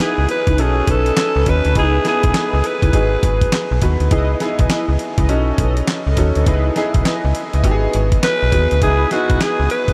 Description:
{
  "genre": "R&B, new jack swing",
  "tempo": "102 BPM",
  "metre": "4/4",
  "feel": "swing 62% on 16ths",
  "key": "C# minor",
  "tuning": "A4 = 440 Hz",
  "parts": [
    { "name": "breathy alto saxophone", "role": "melody", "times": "0.0-3.5, 8.2-9.9 s", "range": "F#4 to B4", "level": "-22 LUFS", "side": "equal", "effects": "none" },
    { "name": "clear baby grand piano", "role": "accompaniment", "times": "0.0-9.9 s", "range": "B3 to B4", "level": "-24 LUFS", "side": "equal", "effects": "subtle chorus" },
    { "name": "mellow synth brass", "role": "stabs", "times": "0.0-9.9 s", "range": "D#4 to D#5", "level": "-29 LUFS", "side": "equal", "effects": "chorus, phaser, analog delay" },
    { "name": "dusty soul sampler-style drum kit", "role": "drums", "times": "0.0-9.9 s", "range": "handclaps, hi-hat, kick drum, snare drum", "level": "-22 LUFS", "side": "equal", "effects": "none" },
    { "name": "slap-like FM bass", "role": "bass", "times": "0.2-9.9 s", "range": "G#1 to D#2", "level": "-20 LUFS", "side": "equal", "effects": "none" }
  ],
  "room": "moderate huge ambient reverb, RT60 7.5 s",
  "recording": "dreamy mix soaked in reverb",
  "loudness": "-16 LUFS",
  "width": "mono",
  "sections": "0.0-9.9 A section",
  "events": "none",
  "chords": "0.0 C#m9; 0.6 B7; 1.8 C#m9; 2.9 G#m7; 4.1 C#m9; 5.3 B7; 6.5 C#m9; 7.6 G#m7; 8.8 C#m9"
}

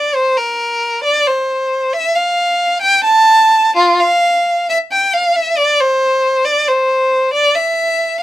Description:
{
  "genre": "classical, baroque-style suite movement for unaccompanied violin",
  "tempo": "68 BPM",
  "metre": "3/4",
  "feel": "rubato",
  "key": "F major",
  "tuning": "A4 = 441 Hz",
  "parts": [
    { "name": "rich violin", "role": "solo", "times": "0.0-8.2 s", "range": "F4 to A5", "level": "-11 LUFS", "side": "equal", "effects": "none" }
  ],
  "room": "light reverb",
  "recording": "none",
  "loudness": "-11 LUFS",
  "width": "side -14 dB against mid",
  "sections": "0.0-8.2 A section",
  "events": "none",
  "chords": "none"
}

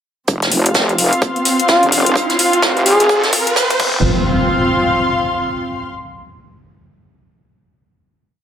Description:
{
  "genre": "bass house",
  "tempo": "128 BPM",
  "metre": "4/4",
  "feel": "swing 61% on 16ths",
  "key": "unclear",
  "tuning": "A4 = 440 Hz",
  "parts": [
    { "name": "wobble bass", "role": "bass", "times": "0.3-4.0 s", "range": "F1", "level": "-18 LUFS", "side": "equal", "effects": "chorus, overdrive, sidechain pumping, high-pass filter" },
    { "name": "electronic kick drum", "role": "drums", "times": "0.3-3.9 s", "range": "none", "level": "-18 LUFS", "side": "equal", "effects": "high-pass filter on kick" },
    { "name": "jazz brush drum kit", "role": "drums", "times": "0.3-3.8 s", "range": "hi-hat, snare drum", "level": "-19 LUFS", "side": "right 2 dB", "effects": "high-pass filter on hats, high-pass filter on snare, high-pass filter on room" },
    { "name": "riser and impact", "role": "sound effects", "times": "1.3-5.7 s", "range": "none", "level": "-20 LUFS", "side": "right 1 dB", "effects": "none" },
    { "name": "muted studio string section", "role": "texture", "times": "0.3-5.9 s", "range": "C4 to C6", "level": "-18 LUFS", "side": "equal", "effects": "sidechain pumping" },
    { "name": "garage drum kit", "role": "drums", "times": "0.4-3.9 s", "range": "crash cymbal, hi-hat", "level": "-19 LUFS", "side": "left 2 dB", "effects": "high-pass filter on hats, high-pass filter on cymbals" },
    { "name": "trumpet with bucket mute", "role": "melody", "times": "1.7-3.2 s", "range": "F4 to Ab4", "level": "-16 LUFS", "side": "equal", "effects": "tape echo" }
  ],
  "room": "moderate digital room reverb, RT60 1.1 s, small room ambience",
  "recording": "high-pass filter",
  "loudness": "-12 LUFS",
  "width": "side -9 dB against mid",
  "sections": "0.3-4.0 build; 4.0-5.9 final chord",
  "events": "build-up 0.3-4.0; riser 1.3-4.0; drum fill 2.2-4.0",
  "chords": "0.3 F5"
}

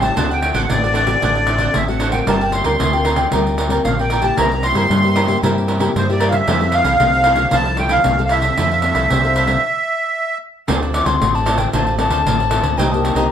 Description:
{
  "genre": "samba and choro",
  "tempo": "114 BPM",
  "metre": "4/4",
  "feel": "straight",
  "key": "F major",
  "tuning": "A4 = 440 Hz",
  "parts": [
    { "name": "accordion", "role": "melody", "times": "0.0-10.4 s", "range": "C5 to C6", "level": "-17 LUFS", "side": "right 1 dB", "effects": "light tremolo tuning, plate reverb" },
    { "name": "cavaquinho", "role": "accompaniment", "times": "0.0-13.3 s", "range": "D4 to G5", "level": "-23 LUFS", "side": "right 3 dB", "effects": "none" },
    { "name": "nylon-string guitar", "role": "accompaniment", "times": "0.0-13.3 s", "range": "G2 to Bb4", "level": "-23 LUFS", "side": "left 4 dB", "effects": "none" },
    { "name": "fingered electric bass", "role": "bass", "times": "0.0-13.3 s", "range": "G1 to G2", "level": "-20 LUFS", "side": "equal", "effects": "none" },
    { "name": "pandeiro", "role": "percussion", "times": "0.0-13.3 s", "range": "none", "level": "-21 LUFS", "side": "right 2 dB", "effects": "none" },
    { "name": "bright reedy baroque flute", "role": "second line", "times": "8.8-13.3 s", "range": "A4 to D6", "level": "-20 LUFS", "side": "left 6 dB", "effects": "none" }
  ],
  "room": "moderate studio ambience, RT60 0.5 s",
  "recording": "lossy compression artefacts",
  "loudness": "-14 LUFS",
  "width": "side -9 dB against mid",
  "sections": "0.0-10.7 A section; 10.7-13.3 B section",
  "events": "stop 9.6-10.7; flute solo 10.7-13.3",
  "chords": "0.2 D7; 2.3 Gm7; 4.4 C7; 6.5 Fmaj7; 10.7 Dm7; 12.8 Cm7"
}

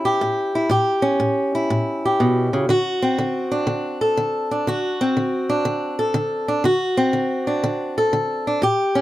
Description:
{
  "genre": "blues",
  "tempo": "121 BPM",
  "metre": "4/4",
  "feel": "swing 67% on 8ths",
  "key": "unclear",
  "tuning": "A4 = 439 Hz",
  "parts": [
    { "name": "fingerpicked swing-style acoustic guitar", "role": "solo", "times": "0.0-9.0 s", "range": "A2 to A4", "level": "-18 LUFS", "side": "equal", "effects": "none" }
  ],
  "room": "little or no reverb",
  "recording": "close, detailed microphones",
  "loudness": "-18 LUFS",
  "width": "side -15 dB against mid",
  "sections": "0.0-9.0 A section",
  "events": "none",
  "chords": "0.0 A7; 2.7 D7"
}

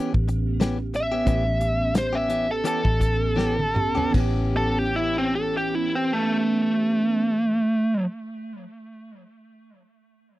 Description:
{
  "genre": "straight-eighth soul blues",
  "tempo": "77-94 BPM",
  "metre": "4/4",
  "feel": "swing 55% on 16ths",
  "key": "A mixolydian",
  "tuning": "A4 = 440 Hz",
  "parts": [
    { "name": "bell-like tine electric piano", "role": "accompaniment", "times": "0.0-7.3 s", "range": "B3 to G4", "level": "-29 LUFS", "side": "right 4 dB", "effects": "phaser" },
    { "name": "direct-recorded clean electric guitar", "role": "stabs", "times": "0.0-7.7 s", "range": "E3 to G4", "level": "-30 LUFS", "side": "left 5 dB", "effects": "none" },
    { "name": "vintage muted fingered electric bass", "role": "bass", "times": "0.1-7.3 s", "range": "A1", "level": "-26 LUFS", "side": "equal", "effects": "none" },
    { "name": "warm soul drum kit", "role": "drums", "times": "0.1-4.3 s", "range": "crash cymbal, hi-hat, kick drum, snare drum, toms", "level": "-25 LUFS", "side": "equal", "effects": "none" },
    { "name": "biting lead guitar", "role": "melody", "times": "1.0-8.0 s", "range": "A3 to E5", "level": "-23 LUFS", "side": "equal", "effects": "overdrive" }
  ],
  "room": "little or no reverb",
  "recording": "dry, close 1970s-style studio recording",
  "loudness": "-21 LUFS",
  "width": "side -16 dB against mid",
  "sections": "0.0-4.1 A section; 4.1-7.3 B section",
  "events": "slowing down 0.0-4.1; drum fill 3.4-4.1",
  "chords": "0.0 A9"
}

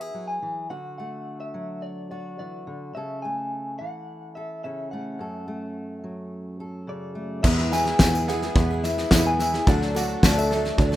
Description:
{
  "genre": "indie folk with a building arrangement",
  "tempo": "107 BPM",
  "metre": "4/4",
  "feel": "straight",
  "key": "unclear",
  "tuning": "A4 = 436 Hz",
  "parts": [
    { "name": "electric guitar through a small old amp", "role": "melody", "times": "0.0-11.0 s", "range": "D5 to G#5", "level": "-30 LUFS", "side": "left 1 dB", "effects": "tremolo" },
    { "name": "fingerpicked steel-string acoustic guitar", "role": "accompaniment", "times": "0.0-7.4 s", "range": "F#2 to A4", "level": "-35 LUFS", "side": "equal", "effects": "none" },
    { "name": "picked twelve-string acoustic guitar", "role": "accompaniment", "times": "7.4-11.0 s", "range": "D3 to A4", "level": "-29 LUFS", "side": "left 3 dB", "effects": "none" },
    { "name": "warm baby grand piano", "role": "accompaniment", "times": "7.4-11.0 s", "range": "D2 to F#5", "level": "-32 LUFS", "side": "left 2 dB", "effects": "none" },
    { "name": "bright upright piano", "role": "arpeggios", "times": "7.4-11.0 s", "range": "B3 to A4", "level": "-31 LUFS", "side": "right 7 dB", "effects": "none" },
    { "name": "picked electric bass", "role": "bass", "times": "7.4-11.0 s", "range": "D2 to E2", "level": "-25 LUFS", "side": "equal", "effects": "none" },
    { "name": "loose indie drum kit", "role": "drums", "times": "7.4-11.0 s", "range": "crash cymbal, kick drum, snare drum", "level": "-21 LUFS", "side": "equal", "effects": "none" },
    { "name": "tambourine", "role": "percussion", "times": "7.5-10.6 s", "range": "none", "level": "-36 LUFS", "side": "right 2 dB", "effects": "none" }
  ],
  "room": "little or no reverb",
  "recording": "rough home demo mix",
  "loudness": "-22 LUFS",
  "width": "side -14 dB against mid",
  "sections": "0.0-7.4 A section; 7.4-11.0 B section",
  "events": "none",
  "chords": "0.0 E; 0.7 D; 3.0 A/C#; 5.2 F#m; 7.4 E; 9.7 D"
}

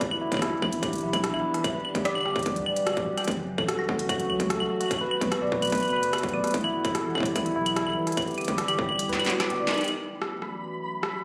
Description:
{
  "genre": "IDM",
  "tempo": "147 BPM",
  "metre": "4/4",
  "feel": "straight",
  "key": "F# phrygian",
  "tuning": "A4 = 441 Hz",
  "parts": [
    { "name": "warbly tape-like pad", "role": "sustained chords", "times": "0.1-11.2 s", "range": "D3 to G4", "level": "-38 LUFS", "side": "equal", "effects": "chorus, built-in reverb, phaser" },
    { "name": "tine electric piano", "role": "arpeggios", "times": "0.0-9.8 s", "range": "E3 to G5", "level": "-30 LUFS", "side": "equal", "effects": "tape echo" },
    { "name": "warm sub bass", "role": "bass", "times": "0.0-9.7 s", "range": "D1 to D2", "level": "-42 LUFS", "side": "equal", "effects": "tube saturation" },
    { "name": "electronic kick drum", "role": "drums", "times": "0.0-8.9 s", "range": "none", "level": "-33 LUFS", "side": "equal", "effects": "distortion, overdrive" },
    { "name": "industrial drum kit", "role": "drums", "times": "0.0-11.1 s", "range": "claves, hi-hat, rim click, snare drum", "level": "-32 LUFS", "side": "equal", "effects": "overdrive, digital delay" },
    { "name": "flickering grainy texture", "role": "texture", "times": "10.2-11.2 s", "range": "B5", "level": "-39 LUFS", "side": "equal", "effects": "built-in reverb, sidechain pumping" }
  ],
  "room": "moderate digital room reverb, RT60 1.1 s",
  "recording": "recorded on a phone in the room, studio reverb",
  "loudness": "-27 LUFS",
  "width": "mono",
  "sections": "0.0-9.8 A section; 9.8-11.2 B section",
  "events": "kick drops out 9.0-9.8; drum fill 9.0-9.8; band accent 9.7; filter sweep on ambient pad 9.8-11.2",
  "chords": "0.0 Em7; 1.6 G6; 3.3 F#m7; 4.9 Bm7; 6.5 Em7; 8.2 G6; 9.8 F#m7"
}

